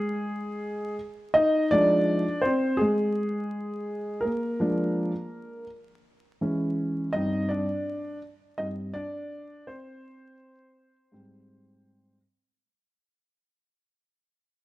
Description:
hip hop; 83 BPM; 4/4; swing 59% on 16ths; F dorian; A4 = 440 Hz
dark grand piano; solo; 0.0-12.2 s; G2 to Eb5; -25 LUFS; equal
moderate echo chamber reverb, RT60 1.8 s, studio ambience; dark, warm production, vinyl crackle; -24 LUFS; side -17 dB against mid
0.0-1.4 A section; 1.4-12.9 B section
grand piano solo 0.0-1.4, 1.4-12.9; fade-out 1.4-12.9
0.0 N.C.; 1.4 Fm7; 4.2 Bb7/F; 6.4 E6; 7.1 Eb6/G; 10.0 Abmaj7
0.63 | 1.35 2.08 2.80 3.52 | 4.24 4.97 5.69 6.41 | 7.13 7.86 8.58 9.30 | 10.03 10.75 11.47

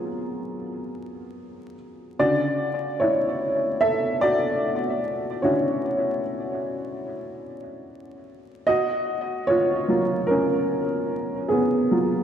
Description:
hip hop; 74 BPM; 4/4; swing 60% on 16ths; A4 = 441 Hz
dark upright piano; solo; 0.0-12.2 s; C#3 to E5; -22 LUFS; equal; ping-pong delay
wet plate reverb, RT60 3.3 s; dreamy mix soaked in reverb, vinyl crackle; -21 LUFS; side -9 dB against mid
0.0-12.2 A section
upright piano solo 0.0-12.2
0.0 F#maj9; 2.2 Dmaj9; 8.7 F#maj9
0.56 1.37 | 2.19 3.00 3.81 4.62 | 5.43 6.24 7.05 7.86 | 8.67 9.48 10.29 11.10 | 11.91

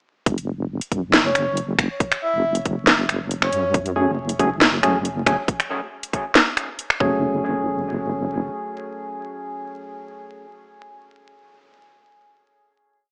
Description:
deep dubstep; 138 BPM; 4/4; half-time; F# minor; A4 = 440 Hz
deep soft wobble bass; bass; 0.3-8.5 s; F#1 to F#2; -28 LUFS; equal; chorus
electronic kick drum; drums; 0.3-7.1 s; -26 LUFS; equal
garage drum kit; drums; 0.3-7.0 s; finger snaps, hi-hat, snare drum; -20 LUFS; equal
breathy flute-like synth lead; melody; 1.2-3.7 s; C#5 to E5; -28 LUFS; equal; chorus, cassette tape, dub echo
percussive organ stab; stabs; 4.0-10.5 s; F#3 to G#4; -26 LUFS; equal; chorus, vintage 12-bit sampler grit, dub echo
moderate echo chamber reverb, RT60 1.5 s; vinyl crackle, small speaker sound; -21 LUFS; mono
0.3-7.2 drop; 7.2-10.7 final hit
drop 0.3-7.2
0.3 F#madd9
| 0.27 0.70 1.13 1.57 | 2.00 2.44 2.87 3.31 | 3.74 4.18 4.61 5.05 | 5.48 5.92 6.35 6.79 | 7.22 7.66 8.09 8.53 | 8.96 9.39 9.83 10.27

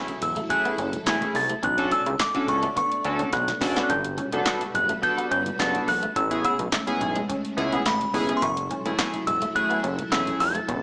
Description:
early-eighties boogie funk; 106 BPM; 4/4; straight; F# minor; A4 = 436 Hz
delicate synth tine bell; melody; 0.0-10.8 s; B5 to A6; -28 LUFS; equal; chorus, phaser
chorused polysynth; accompaniment; 0.0-10.4 s; A3 to A4; -30 LUFS; equal
string machine, full ensemble; sustained chords; 0.0-10.8 s; E3 to B4; -38 LUFS; equal; ensemble chorus
clean electric guitar; riff; 0.0-10.8 s; G#3 to E4; -36 LUFS; equal; analog chorus
electro analog drum machine; drums; 0.1-10.8 s; handclaps, hi-hat, kick drum, snare drum; -32 LUFS; equal
congas; percussion; 0.1-10.8 s; -42 LUFS; equal
fat analog bass; bass; 0.2-10.8 s; E1 to D2; -33 LUFS; equal
moderate large studio reverb, RT60 1.2 s, digital ambience; small speaker sound, faint mains hum; -25 LUFS; mono
0.0-10.8 A section
drum fill 3.3-3.9
0.0 F#m7; 1.6 Bm9; 3.9 Gmaj9; 6.2 Amaj7; 8.4 F#m7
0.50 1.06 | 1.63 2.20 2.76 3.33 | 3.90 4.46 5.03 5.59 | 6.16 6.72 7.29 7.86 | 8.42 8.99 9.55 10.12 | 10.69

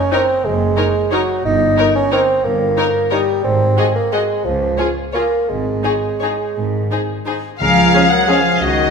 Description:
classical, orchestral ballroom waltz; 160-195 BPM; 3/4; rubato; Db major; A4 = 440 Hz
mellow bassoon; accompaniment; 0.0-8.4 s; F3 to Eb4; -17 LUFS; right 2 dB
dark studio violin section; melody; 0.1-8.9 s; C5 to Gb5; -19 LUFS; left 4 dB
rich studio violin section; second line; 0.1-8.4 s; Db4 to Bb4; -24 LUFS; left 4 dB
warm studio viola section; accompaniment; 0.1-8.4 s; Ab3 to Gb4; -26 LUFS; left 2 dB
rich studio cello section; bass; 0.5-8.9 s; Db2 to Gb3; -23 LUFS; right 3 dB
warm studio double bass section; bass; 0.5-8.9 s; Gb1 to Db2; -23 LUFS; right 1 dB
clear oboe; second line; 7.6-8.9 s; Ab4 to Bb4; -21 LUFS; right 1 dB
concert flute; second line; 7.6-8.9 s; Gb4 to Bb4; -21 LUFS; equal
mellow French horn section; sustained chords; 7.6-8.9 s; Eb3 to Gb3; -22 LUFS; left 5 dB
timpani; percussion; 7.6-8.1 s; Db3; -25 LUFS; left 4 dB
mellow clarinet; second line; 7.9-8.4 s; Db4; -26 LUFS; right 1 dB
wet recital hall reverb, RT60 1.6 s; recorded in a church or concert hall; -13 LUFS; side -5 dB against mid
0.0-7.6 A section; 7.6-8.9 B section
0.0 Ebm; 1.4 Eb/G; 3.4 Ab7; 4.5 Db; 5.5 Ab5; 7.6 Db
0.12 | 0.45 0.77 1.12 | 1.44 1.77 2.12 | 2.44 2.77 3.11 | 3.44 3.78 4.13 | 4.45 4.79 5.14 | 5.49 5.85 6.22 | 6.56 6.91 7.28 | 7.62 7.94 8.29 | 8.61

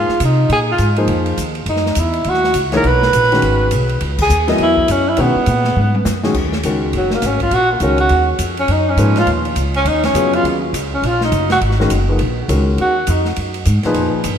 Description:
modal jazz; 205 BPM; 4/4; swing 62% on 8ths; Eb minor from 6.3 s; A4 = 440 Hz
mellow tenor saxophone; melody; 0.0-13.3 s; Gb3 to Cb5; -16 LUFS; right 1 dB; analog delay
warm concert grand piano; accompaniment; 0.0-14.2 s; Bb2 to Eb5; -20 LUFS; left 2 dB
upright bass; bass; 0.0-14.4 s; Gb1 to C3; -18 LUFS; equal
open jazz drum kit; drums; 0.1-14.3 s; crash cymbal, hi-hat, kick drum, ride cymbal, snare drum, toms; -24 LUFS; equal
wet lush hall reverb, RT60 1.8 s, small room ambience; dreamy mix soaked in reverb; -13 LUFS; side -8 dB against mid
0.0-6.3 A section; 6.3-14.4 B section
band accent 4.2; drum fill 5.8-6.3; tenor saxophone solo 6.3-14.4
0.0 Bb9sus4; 1.7 Gb9sus4; 6.3 Ebm11
0.20 | 0.50 0.79 1.08 1.37 | 1.67 1.96 2.25 2.54 | 2.84 3.13 3.42 3.71 | 4.01 4.30 4.59 4.88 | 5.18 5.47 5.76 6.05 | 6.35 6.64 6.93 7.22 | 7.52 7.81 8.10 8.39 | 8.69 8.98 9.27 9.56 | 9.86 10.15 10.44 10.73 | 11.03 11.32 11.61 11.90 | 12.20 12.49 12.78 13.07 | 13.36 13.66 13.95 14.24

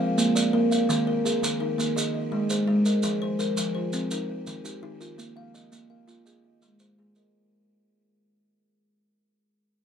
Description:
southern african traditional, mbira-style interlocking cycle; 112 BPM (dotted quarters); 12/8; straight; A4 = 440 Hz
buzzing kalimba; arpeggios; 0.0-7.5 s; Eb3 to F5; -26 LUFS; right 2 dB
kalimba; arpeggios; 0.0-7.5 s; Eb3 to F5; -28 LUFS; left 2 dB
maracas; percussion; 0.2-7.3 s; -32 LUFS; right 2 dB
moderate small room reverb, RT60 0.5 s; dark, warm production; -23 LUFS; side -8 dB against mid
0.0-7.3 A section
fade-out 0.0-7.3
0.0 Bb; 0.9 Eb5; 2.0 Ab; 3.0 F5; 4.1 Eb; 5.2 Bb5; 6.3 Ab
0.35 | 0.89 1.43 1.97 2.50 | 3.04 3.58 4.11 4.65 | 5.19 5.72 6.26 6.80

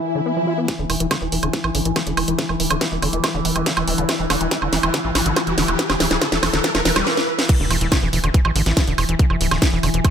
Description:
psychedelic trance; 141 BPM; 4/4; straight; A4 = 440 Hz
overtone-sweeping drone; sustained chords; 0.0-10.1 s; E3; -25 LUFS; left 2 dB; chorus, built-in reverb, sidechain pumping
swell, riser and impact; sound effects; 0.0-9.2 s; -27 LUFS; equal
overdriven acid bass; riff; 0.2-10.1 s; D3 to F4; -25 LUFS; equal; auto-pan, sidechain pumping, dub echo
electronic kick drum; drums; 0.7-10.1 s; -18 LUFS; equal; high-pass filter on kick
garage drum kit; drums; 0.7-10.1 s; crash cymbal, hi-hat, snare drum, woodblock; -21 LUFS; right 1 dB; low-pass filter on snare, low-pass filter on hats, low-pass filter on perc, low-pass filter on cymbals
tight sequencer bass; bass; 0.8-10.0 s; D1 to A1; -24 LUFS; equal; tube saturation
light reverb; -17 LUFS; side -8 dB against mid
0.7-7.5 A section; 7.5-10.1 B section
swell 0.0-0.7; build-up 0.7-7.5; drum fill 0.7-7.1, 7.1-7.5; riser 0.7-7.1; filter sweep on acid bass 0.7-7.5; drop 7.5-10.1; impact 7.5-9.2
0.0 E5; 0.7 Dsus2; 7.5 E5
0.26 | 0.68 1.11 1.53 1.96 | 2.39 2.81 3.24 3.66 | 4.09 4.51 4.94 5.37 | 5.79 6.22 6.64 7.07 | 7.49 7.92 8.34 8.77 | 9.19 9.62 10.04

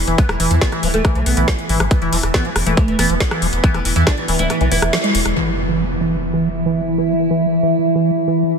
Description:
psychedelic trance; 139 BPM; 4/4; straight; A4 = 440 Hz
oud; melody; 0.0-5.3 s; E3 to E4; -24 LUFS; right 1 dB; phaser, sidechain pumping, digital delay
evolving wavetable pad; sustained chords; 0.0-8.6 s; E3 to E4; -21 LUFS; right 1 dB; chorus, built-in reverb, sidechain pumping
round analog bass; bass; 0.0-5.3 s; D1 to E2; -19 LUFS; equal; tube saturation
liquid acid bass; riff; 0.1-8.4 s; E3 to G#3; -20 LUFS; moving between left 4 dB and right 4 dB; chorus, auto-pan, sidechain pumping, tape echo
garage drum kit; drums; 0.1-5.3 s; hi-hat, rim click, snare drum; -22 LUFS; left 1 dB; low-pass filter on hats, studio reverb, low-pass filter on snare
electronic kick drum; drums; 0.2-4.2 s; -16 LUFS; equal; studio reverb
impact; sound effects; 5.4-7.1 s; -27 LUFS; equal
moderate lush hall reverb, RT60 2.3 s; dense, heavily limited modern master; -14 LUFS; side -6 dB against mid
0.0-5.4 A section; 5.4-8.6 B section
kick drops out 4.5-5.4; band accent 4.9; impact 5.4-7.1; filter sweep on acid bass 5.4-8.6
0.0 E5
| 0.18 0.61 1.05 1.48 | 1.91 2.34 2.77 3.21 | 3.64 4.07 4.50 4.93 | 5.36 5.79 6.23 6.66 | 7.09 7.52 7.95 8.38

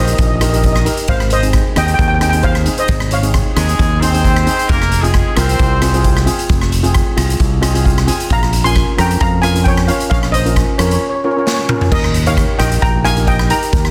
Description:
calypso; 133 BPM; 4/4; swing 54% on 16ths; Ab major; A4 = 440 Hz
steel pan; melody; 0.0-3.5, 8.3-13.9 s; Bb4 to C6; -20 LUFS; equal; plate reverb
steel pan; accompaniment; 0.0-13.9 s; C4 to Ab5; -23 LUFS; equal; plate reverb
modern bright fingered electric bass; bass; 0.0-13.9 s; F1 to F2; -18 LUFS; equal
street-band drum kit; drums; 0.1-13.9 s; crash cymbal, hi-hat, kick drum, rim click, snare drum, toms; -18 LUFS; equal; soft clipping on snare
bright horn section; second line; 3.6-6.3 s; Ab3 to C5; -20 LUFS; equal; plate reverb
light reverb; dense, heavily limited modern master; -14 LUFS; mono
0.0-11.9 A section; 11.9-13.9 A section
steel pan fill 7.4-8.3; drum fill 11.5-11.9
0.0 Eb; 1.1 Ab; 4.7 Fm; 8.3 Bbm; 11.9 Eb
0.19 0.64 | 1.09 1.54 1.99 2.44 | 2.89 3.34 3.79 4.24 | 4.70 5.15 5.60 6.05 | 6.50 6.95 7.40 7.85 | 8.30 8.76 9.21 9.66 | 10.11 10.56 11.02 11.47 | 11.92 12.37 12.83 13.28 | 13.73

